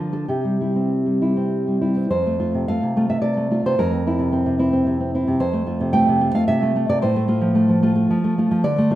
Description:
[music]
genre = romantic piece for solo classical guitar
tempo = 95-115 BPM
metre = 3/4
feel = rubato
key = F major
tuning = A4 = 441 Hz
[part]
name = nylon-string guitar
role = solo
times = 0.0-9.0 s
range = F2 to G5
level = -17 LUFS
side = equal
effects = slapback echo
[sound]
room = moderate studio reverb, RT60 0.6 s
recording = rough home demo mix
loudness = -17 LUFS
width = side -14 dB against mid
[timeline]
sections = 0.0-2.1 A section; 2.1-9.0 B section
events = none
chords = 0.3 C; 2.1 F; 3.8 C7/F; 5.4 F; 7.0 F/A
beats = | 0.27 0.89 1.50 | 2.10 2.67 3.21 | 3.77 4.32 4.86 | 5.41 5.95 6.49 | 7.03 7.55 8.10 | 8.64

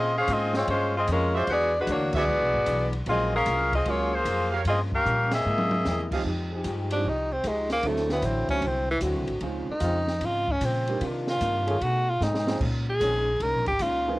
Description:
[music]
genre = jazz, big band swing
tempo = 151 BPM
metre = 4/4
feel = swing 66% on 8ths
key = F minor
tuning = A4 = 442 Hz
[part]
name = bright saxophone section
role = melody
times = 0.0-6.1 s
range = Ab3 to F5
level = -24 LUFS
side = left 1 dB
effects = none
[part]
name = vintage hollow-body jazz guitar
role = accompaniment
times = 0.0-14.1 s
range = G2 to C5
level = -36 LUFS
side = left 4 dB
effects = cassette tape
[part]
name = upright bass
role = bass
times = 0.0-14.2 s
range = G#1 to C3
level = -30 LUFS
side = equal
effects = none
[part]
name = open jazz drum kit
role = drums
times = 0.3-13.9 s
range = crash cymbal, hi-hat, kick drum, ride cymbal, snare drum, toms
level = -35 LUFS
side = equal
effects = none
[part]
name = mellow trumpet section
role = stabs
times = 1.3-6.2 s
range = F#4 to F5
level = -32 LUFS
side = right 4 dB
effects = cassette tape, plate reverb
[part]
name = warm grand piano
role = accompaniment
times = 2.2-14.2 s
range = E3 to G#4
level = -34 LUFS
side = right 5 dB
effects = cassette tape, plate reverb
[part]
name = mellow trombone section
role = sustained chords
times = 6.5-13.2 s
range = Db3 to Ab4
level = -32 LUFS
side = equal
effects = cassette tape
[part]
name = clear tenor saxophone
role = melody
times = 6.9-14.2 s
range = E3 to Bb4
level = -26 LUFS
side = equal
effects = none
[sound]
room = moderate booth ambience, RT60 0.2 s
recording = home recording on cassette, vinyl crackle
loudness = -23 LUFS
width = side -19 dB against mid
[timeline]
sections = 0.0-6.2 A section; 6.2-14.2 B section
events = band accent 2.1, 5.3; drum fill 5.1-5.9, 12.2-12.6; tenor saxophone solo 6.2-14.2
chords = 0.0 Bbm9; 1.5 E9; 3.1 Gbmaj9; 4.7 Gm7b5; 5.5 C7alt; 6.2 Fm9; 7.8 D9; 9.4 Dbmaj7; 11.0 Cm11; 11.8 B13; 12.6 Bbm11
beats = 0.29 0.69 1.08 | 1.48 1.88 2.28 2.67 | 3.07 3.47 3.87 4.26 | 4.66 5.06 5.45 5.85 | 6.25 6.65 7.04 7.44 | 7.84 8.24 8.63 9.03 | 9.43 9.83 10.22 10.62 | 11.02 11.42 11.82 12.21 | 12.61 13.01 13.41 13.81

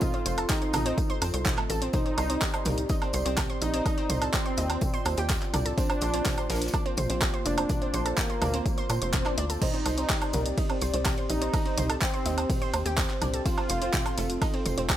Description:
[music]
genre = melodic techno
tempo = 125 BPM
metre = 4/4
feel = straight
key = C dorian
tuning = A4 = 440 Hz
[part]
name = wide unison lead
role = melody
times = 0.0-14.3 s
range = Bb3 to F4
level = -34 LUFS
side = equal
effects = cassette tape, sidechain pumping, dub echo
[part]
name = dark analog pad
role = sustained chords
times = 0.0-15.0 s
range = Bb3 to D5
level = -35 LUFS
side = equal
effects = chorus, sidechain pumping
[part]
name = analog pluck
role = arpeggios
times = 0.0-15.0 s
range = A3 to C6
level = -34 LUFS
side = right 2 dB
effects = chorus, sidechain pumping, dub echo
[part]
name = deep house drum kit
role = drums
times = 0.0-15.0 s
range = crash cymbal, handclaps, hi-hat, ride cymbal, toms, woodblock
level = -31 LUFS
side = right 2 dB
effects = sidechain pumping on hats, studio reverb, sidechain pumping on toms, sidechain pumping on cymbals, sidechain pumping on perc
[part]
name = electronic kick drum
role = drums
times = 0.0-15.0 s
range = none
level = -30 LUFS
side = equal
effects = studio reverb
[part]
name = tight funk drum kit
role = drums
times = 0.0-15.0 s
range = hi-hat, snare drum, tambourine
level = -43 LUFS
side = equal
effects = none
[part]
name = tight sequencer bass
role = bass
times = 0.3-15.0 s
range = F1 to Bb2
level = -31 LUFS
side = equal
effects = sidechain pumping
[part]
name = swell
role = sound effects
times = 8.9-9.6 s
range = none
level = -38 LUFS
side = left 3 dB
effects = none
[sound]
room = little or no reverb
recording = none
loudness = -25 LUFS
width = side -12 dB against mid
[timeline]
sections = 0.0-15.0 A section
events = swell 8.9-9.6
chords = 0.0 F; 1.9 Cm; 5.8 Bbadd9; 9.6 Cm; 13.5 F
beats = | 0.02 0.50 0.98 1.46 | 1.94 2.42 2.90 3.38 | 3.86 4.34 4.82 5.30 | 5.78 6.26 6.74 7.22 | 7.70 8.18 8.66 9.14 | 9.62 10.10 10.58 11.06 | 11.54 12.02 12.50 12.98 | 13.46 13.94 14.42 14.90

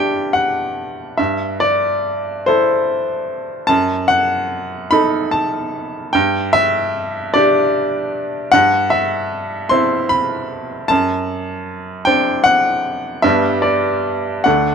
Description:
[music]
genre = classical, romantic nocturne for solo piano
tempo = 45-52 BPM (dotted quarters)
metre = 12/8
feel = rubato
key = G major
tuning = A4 = 440 Hz
[part]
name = bright baby grand piano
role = solo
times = 0.0-14.7 s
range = D2 to C6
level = -15 LUFS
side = equal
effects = none
[sound]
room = moderate studio reverb, RT60 0.8 s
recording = dark, warm production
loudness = -15 LUFS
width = side -6 dB against mid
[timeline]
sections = 0.0-14.7 A section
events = none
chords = 0.0 G5; 1.2 Am7/G; 3.7 F#m6; 6.2 G5; 8.5 Cmaj7#11/G; 10.9 D7/F#; 13.2 G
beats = 1.19 2.48 | 3.69 4.93 6.15 7.35 | 8.54 9.72 10.90 12.07 | 13.24 14.46

